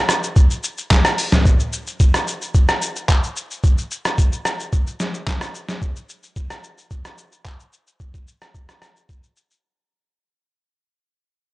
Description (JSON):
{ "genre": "amapiano", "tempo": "110 BPM", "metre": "4/4", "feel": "straight", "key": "none", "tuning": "none", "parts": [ { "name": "trip hop sampler-style drum kit", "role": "drums", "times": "0.1-9.6 s", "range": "handclaps, hi-hat, kick drum, rim click, shaker, snare drum, toms", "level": "-16 LUFS", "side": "equal", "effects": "none" } ], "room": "little or no reverb", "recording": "dry, gritty hardware recording, cassette tape, nothing above 10.6 kHz", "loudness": "-17 LUFS", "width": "side -20 dB against mid", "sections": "0.0-10.2 A section", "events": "fade-out 0.0-10.2; break 9.6-10.2", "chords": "none", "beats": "0.36 0.91 | 1.45 2.00 2.54 3.09 | 3.64 4.18 4.73 5.27 | 5.82 6.36 6.91 7.45 | 8.00 8.54 9.09" }